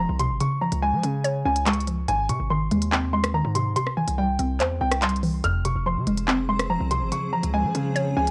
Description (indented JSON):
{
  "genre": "hip hop, drill",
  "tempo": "143 BPM",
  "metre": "4/4",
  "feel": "half-time",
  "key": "unclear",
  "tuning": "A4 = 440 Hz",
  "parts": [
    { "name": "dark grand piano", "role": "melody", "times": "0.0-8.3 s", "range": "G5 to F6", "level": "-29 LUFS", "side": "equal", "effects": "none" },
    { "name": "hollow square pluck", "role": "accompaniment", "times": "0.0-8.3 s", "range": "F2 to Db5", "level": "-28 LUFS", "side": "equal", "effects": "chorus" },
    { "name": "hard-hitting 808-style bass", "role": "bass", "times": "0.0-8.3 s", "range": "F1 to F3", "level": "-29 LUFS", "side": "equal", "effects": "none" },
    { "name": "drill drum kit", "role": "drums", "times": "0.2-8.3 s", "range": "handclaps, hi-hat, rim click", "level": "-29 LUFS", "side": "equal", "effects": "vintage 12-bit sampler grit" },
    { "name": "granular cloud pad", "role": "sustained chords", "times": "6.0-8.3 s", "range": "F3 to Db5", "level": "-36 LUFS", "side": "equal", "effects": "built-in reverb" }
  ],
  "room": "little or no reverb",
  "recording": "dry, gritty hardware recording, transformer saturation",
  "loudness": "-24 LUFS",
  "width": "mono",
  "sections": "0.0-8.3 A section",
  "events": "none",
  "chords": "0.4 Db; 2.1 Ab; 3.8 C; 5.4 Fm; 7.1 Db",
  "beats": "| 0.41 0.82 1.24 1.66 | 2.08 2.50 2.92 3.34 | 3.76 4.18 4.60 5.02 | 5.44 5.86 6.28 6.70 | 7.12 7.54 7.96"
}